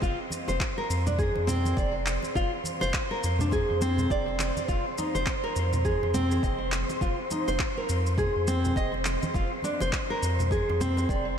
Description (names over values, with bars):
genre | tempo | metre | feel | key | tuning
organic downtempo | 103 BPM | 4/4 | swing 58% on 16ths | unclear | A4 = 440 Hz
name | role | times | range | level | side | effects
nylon-string guitar | arpeggios | 0.0-11.3 s | C4 to Eb5 | -29 LUFS | equal | ping-pong delay
warm sub bass | bass | 0.0-11.4 s | F1 to F2 | -29 LUFS | equal | sidechain pumping
electronic kick drum | drums | 0.0-11.2 s | none | -31 LUFS | equal | none
electronic shaker and handclaps | drums | 0.0-11.2 s | none | -36 LUFS | equal | none
wind-like tuned noise texture | texture | 0.0-11.4 s | C5 | -35 LUFS | right 1 dB | built-in reverb, lush chorus
congas | percussion | 0.3-11.1 s | none | -39 LUFS | right 3 dB | none
room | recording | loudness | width
moderate cathedral reverb, RT60 6.1 s | dreamy mix soaked in reverb | -25 LUFS | side -8 dB against mid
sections
0.0-11.4 A section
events
none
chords
0.0 Bbsus2/F (rootless); 4.7 F7(no3); 9.3 Bbadd9/F